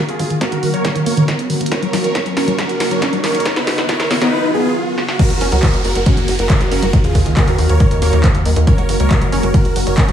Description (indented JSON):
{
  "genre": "uplifting trance",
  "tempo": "138 BPM",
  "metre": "4/4",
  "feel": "straight",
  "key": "F# major",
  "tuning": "A4 = 441 Hz",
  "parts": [
    { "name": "shimmering ambient pad", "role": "sustained chords", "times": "0.1-10.1 s", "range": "C#3 to A#4", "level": "-24 LUFS", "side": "equal", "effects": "chorus, built-in reverb, sidechain pumping" },
    { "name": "tight sequenced synth", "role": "arpeggios", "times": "0.0-10.1 s", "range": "D#3 to F#4", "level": "-21 LUFS", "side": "equal", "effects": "chorus, phaser, sidechain pumping, tape echo" },
    { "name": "riser and downlifter", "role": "sound effects", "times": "0.1-8.7 s", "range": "none", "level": "-26 LUFS", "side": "right 1 dB", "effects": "none" },
    { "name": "supersaw chords", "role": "melody", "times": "0.1-10.1 s", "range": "A#3 to C#5", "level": "-20 LUFS", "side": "right 1 dB", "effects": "sidechain pumping, low-pass filter, tape echo" },
    { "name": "punchy analog drum machine", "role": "drums", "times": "0.1-10.1 s", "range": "crash cymbal, handclaps, hi-hat, snare drum", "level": "-22 LUFS", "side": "equal", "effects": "high-pass filter on snare, sidechain pumping on hats, high-pass filter on hats, sidechain pumping on cymbals, high-pass filter on cymbals, high-pass filter on room" },
    { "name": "electronic kick drum", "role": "drums", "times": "0.2-10.1 s", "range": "none", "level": "-14 LUFS", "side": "equal", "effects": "overdrive, high-pass filter on kick" },
    { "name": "tight sequencer bass", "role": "bass", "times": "5.3-10.1 s", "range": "F#1 to D#2", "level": "-17 LUFS", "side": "equal", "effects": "sidechain pumping" }
  ],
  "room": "light reverb",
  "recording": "studio reverb",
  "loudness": "-13 LUFS",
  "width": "side -9 dB against mid",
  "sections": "0.0-5.2 A section; 5.2-10.1 B section",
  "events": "build-up 0.0-5.2; drum fill 0.0-4.3, 5.0; filter sweep on synth arpeggio sound 0.0-5.2; riser 0.1-5.2; drop 5.2-10.1",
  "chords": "0.0 D#m; 1.7 F#; 3.5 B; 5.2 F#; 6.9 D#m; 8.7 F#",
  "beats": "0.41 0.85 1.28 | 1.72 2.15 2.58 3.02 | 3.46 3.89 4.32 4.76 | 5.19 5.63 6.06 6.50 | 6.93 7.37 7.80 8.24 | 8.67 9.11 9.54 9.98"
}